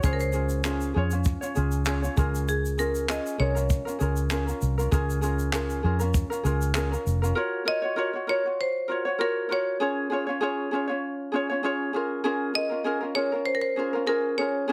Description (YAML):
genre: acoustic pop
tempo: 98 BPM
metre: 4/4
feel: swing 55% on 16ths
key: unclear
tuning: A4 = 441 Hz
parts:
  - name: marimba with hard mallets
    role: melody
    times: 0.0-14.7 s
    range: Ab4 to Eb5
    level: -30 LUFS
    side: equal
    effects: none
  - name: ukulele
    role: accompaniment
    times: 0.0-14.7 s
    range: Db4 to Db5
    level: -30 LUFS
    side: equal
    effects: none
  - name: vintage muted fingered electric bass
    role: bass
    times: 0.0-7.3 s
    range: F1 to F2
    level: -28 LUFS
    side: equal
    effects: none
  - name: compact cocktail drum kit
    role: drums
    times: 0.0-6.9 s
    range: handclaps, kick drum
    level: -29 LUFS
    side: equal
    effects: none
  - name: tube shaker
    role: percussion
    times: 0.0-7.4 s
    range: none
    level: -45 LUFS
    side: equal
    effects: none
room: moderate studio reverb, RT60 0.8 s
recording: heavily compressed radio sound, multiband compression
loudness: -27 LUFS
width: mono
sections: 0.0-7.4 A section; 7.4-14.7 B section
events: none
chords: 0.0 Db; 2.2 Bbm7; 7.4 Gbmaj7; 9.8 Db; 11.9 Bbm7/Db